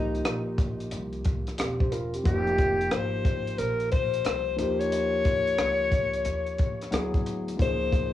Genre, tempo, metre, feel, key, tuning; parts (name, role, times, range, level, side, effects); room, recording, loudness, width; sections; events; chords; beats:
hip hop, jazz-hop; 90 BPM; 4/4; swing 65% on 16ths; F minor; A4 = 439 Hz
breathy alto saxophone; melody; 0.0-8.1 s; Eb4 to Db5; -28 LUFS; left 3 dB; cassette tape, analog delay, plate reverb
dark baby grand piano; accompaniment; 0.0-8.1 s; F3 to C5; -32 LUFS; equal; cassette tape, plate reverb
upright bass; bass; 0.0-8.1 s; E1 to Eb2; -34 LUFS; equal
compact cocktail drum kit; drums; 0.1-8.1 s; hi-hat, kick drum, rim click; -28 LUFS; equal; vintage 12-bit sampler grit, cassette tape
moderate small room reverb, RT60 0.5 s; home recording on cassette, small room ambience; -24 LUFS; side -12 dB against mid
0.0-8.1 A section
0.0 Cm7; 2.3 Fm11; 4.6 Eb9; 6.9 Dmaj9; 7.6 Dbmaj9
0.25 0.92 1.58 | 2.25 2.92 3.58 4.25 | 4.92 5.58 6.25 6.92 | 7.58